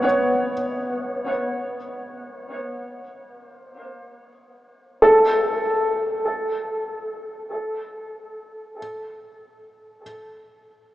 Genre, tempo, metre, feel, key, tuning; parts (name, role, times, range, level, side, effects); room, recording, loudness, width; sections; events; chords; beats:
ambient; free time; A4 = 440 Hz
felt-muted upright piano; solo; 0.0-0.5, 5.0-10.0 s; B3 to C#5; -20 LUFS; equal; diffuse ambient delay
wet cathedral reverb, RT60 4.9 s; in a vast, echoing space, small speaker sound; -20 LUFS; side -15 dB against mid
0.0-5.0 A section; 5.0-7.5 B section
0.0 Bsus2; 5.0 N.C.
free time